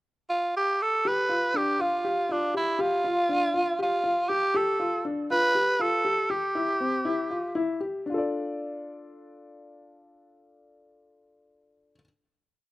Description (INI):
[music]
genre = progressive instrumental, progressive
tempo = 239 BPM (eighths)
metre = 7/8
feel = straight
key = D dorian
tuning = A4 = 440 Hz
[part]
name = growling tenor saxophone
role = melody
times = 0.3-7.6 s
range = D4 to B4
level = -25 LUFS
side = right 1 dB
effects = slapback echo
[part]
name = dark baby grand piano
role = arpeggios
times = 1.1-12.0 s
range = C4 to D5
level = -29 LUFS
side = left 2 dB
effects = none
[sound]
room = little or no reverb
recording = recorded outdoors, with no room sound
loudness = -24 LUFS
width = side -18 dB against mid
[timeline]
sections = 0.0-1.1 pickup bar; 1.1-8.1 groove; 8.1-11.6 final chord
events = none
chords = 0.0 N.C.; 1.1 Dm; 6.3 Cadd11; 8.1 Dm